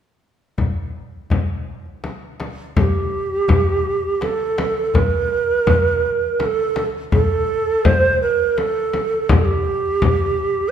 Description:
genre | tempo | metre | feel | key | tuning
Persian modal ensemble | 83 BPM | 3/4 | straight | unclear | A4 = 440 Hz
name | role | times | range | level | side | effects
frame drum | percussion | 0.6-10.2 s | none | -22 LUFS | left 3 dB | none
tombak | percussion | 0.6-10.7 s | none | -22 LUFS | left 2 dB | none
breathy bright low ney | melody | 2.8-10.7 s | G4 to C5 | -18 LUFS | right 3 dB | none
room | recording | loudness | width
wet recital hall reverb, RT60 1.6 s | recorded in a church or concert hall | -16 LUFS | side -9 dB against mid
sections
0.6-2.8 A section; 2.8-10.7 B section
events
none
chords
none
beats
| 0.58 1.31 2.04 | 2.76 3.49 4.22 | 4.94 5.67 6.39 | 7.12 7.85 8.57 | 9.30 10.03

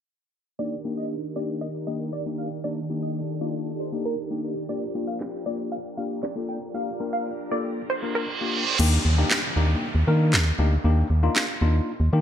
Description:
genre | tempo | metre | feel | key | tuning
dance-pop | 117 BPM | 4/4 | straight | unclear | A4 = 440 Hz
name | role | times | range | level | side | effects
wide unison pluck | melody | 0.6-8.3 s | Bb4 to G5 | -33 LUFS | right 2 dB | wide subtle chorus, ping-pong delay
tine electric piano | accompaniment | 0.6-12.2 s | Bb3 to Bb4 | -29 LUFS | left 3 dB | wide subtle chorus
ensemble organ-string | sustained chords | 0.6-8.8 s | Eb3 to Bb4 | -33 LUFS | right 1 dB | phaser, ensemble chorus
house drum kit | drums | 5.2-11.5 s | crash cymbal, handclaps, snare drum | -26 LUFS | equal | gated reverb
reverse cymbal and downlifter | sound effects | 8.0-12.2 s | none | -29 LUFS | right 3 dB | none
organ-like FM bass | bass | 8.8-12.2 s | D2 to Eb3 | -19 LUFS | equal | none
room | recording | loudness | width
light reverb, digital ambience | bright 1980s-style digital production, low-pass filter | -23 LUFS | side -9 dB against mid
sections
0.6-8.8 A section; 8.8-12.2 B section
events
filter sweep 0.6-8.8; reverse cymbal 8.0-8.8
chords
0.6 Ebmaj7; 4.7 Gm7; 8.8 Ebmaj7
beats
| 0.59 1.10 1.62 2.13 | 2.64 3.15 3.67 4.18 | 4.69 5.21 5.72 6.23 | 6.74 7.26 7.77 8.28 | 8.79 9.31 9.82 10.33 | 10.85 11.36 11.87

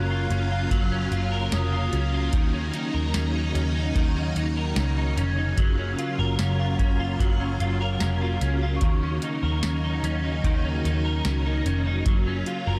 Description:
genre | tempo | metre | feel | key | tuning
dream pop | 74 BPM | 4/4 | straight | Eb minor | A4 = 440 Hz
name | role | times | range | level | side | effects
phased string machine | sustained chords | 0.0-12.8 s | Db3 to F4 | -33 LUFS | equal | ensemble chorus, phaser
electric guitar at the edge of break-up | arpeggios | 0.0-12.8 s | Eb3 to Bb4 | -32 LUFS | equal | ensemble chorus, delay
vintage muted picked electric bass | bass | 0.0-12.8 s | F1 to Eb2 | -28 LUFS | equal | none
glockenspiel with soft plastic mallets | texture | 0.0-9.2 s | Db6 to Ab6 | -42 LUFS | equal | delay
booming analog drum machine | drums | 0.3-12.7 s | hi-hat, kick drum, snare drum, tambourine | -27 LUFS | equal | overdrive
room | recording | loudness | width
light reverb | dense, heavily limited modern master | -25 LUFS | mono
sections
0.0-12.8 A section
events
none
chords
0.0 Gbmaj7; 2.3 Ebm7; 12.1 Gbmaj7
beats
0.71 1.52 | 2.33 3.14 3.95 4.76 | 5.57 6.38 7.20 8.01 | 8.82 9.63 10.44 11.25 | 12.06

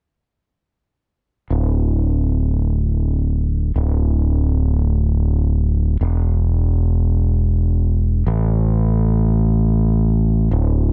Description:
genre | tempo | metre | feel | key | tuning
rock | free time | none | none | unclear | A4 = 440 Hz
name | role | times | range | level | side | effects
growling fingered electric bass | bass | 1.5-10.9 s | D1 to A1 | -18 LUFS | equal | overdrive
room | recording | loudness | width
little or no reverb | none | -18 LUFS | mono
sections
1.5-10.9 A section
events
none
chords
none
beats
free time

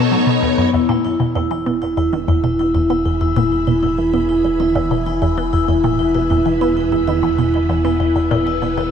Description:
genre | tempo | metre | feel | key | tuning
ambient, sequencer-driven space music | 97 BPM | 4/4 | straight | E major | A4 = 441 Hz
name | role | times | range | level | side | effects
phased string machine | sustained chords | 0.0-8.9 s | Cb3 to B5 | -25 LUFS | equal | ensemble chorus, phaser
vibraphone with medium mallets | arpeggios | 0.0-8.8 s | Cb4 to E4 | -17 LUFS | moving between left 6 dB and right 5 dB | auto-pan, tape echo
resonant blip pluck | riff | 0.0-8.9 s | Eb2 to B3 | -19 LUFS | equal | phaser, tape echo
fat analog bass | bass | 0.7-8.9 s | E1 | -24 LUFS | equal | none
room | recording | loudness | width
wet plate reverb, RT60 2.9 s | dreamy mix soaked in reverb | -14 LUFS | side -8 dB against mid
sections
0.7-8.9 A section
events
none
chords
0.0 Cb7; 0.7 E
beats
0.12 | 0.73 1.35 1.97 2.59 | 3.21 3.83 4.45 5.07 | 5.68 6.30 6.92 7.54 | 8.16 8.78

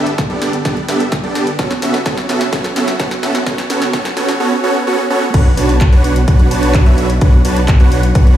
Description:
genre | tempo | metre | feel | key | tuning
EDM, festival progressive house | 128 BPM | 4/4 | straight | B minor | A4 = 440 Hz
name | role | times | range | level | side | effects
supersaw chords | riff | 0.0-8.4 s | B3 to A5 | -16 LUFS | right 2 dB | sidechain pumping, dub echo
wide detuned saw bass | bass | 0.0-8.4 s | F#1 to B1 | -18 LUFS | equal | chorus, sidechain pumping
house drum kit | drums | 0.1-8.4 s | crash cymbal, handclaps, hi-hat, snare drum | -23 LUFS | equal | high-pass filter on snare, high-pass filter on hats, high-pass filter on cymbals
electronic kick drum | drums | 0.2-8.2 s | none | -12 LUFS | equal | none
room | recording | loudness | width
light reverb | played on a big sound system in a bare room, large studio reverb, high-pass filter | -11 LUFS | side -11 dB against mid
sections
0.0-5.3 A section; 5.3-8.4 B section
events
build-up 0.0-5.3; drum fill 0.0-4.4; drop 5.3-8.4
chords
0.0 Gadd9; 1.6 F#m; 5.3 Bmadd9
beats
0.18 0.65 1.12 | 1.59 2.06 2.53 3.00 | 3.47 3.93 4.40 4.87 | 5.34 5.81 6.28 6.75 | 7.22 7.68 8.15

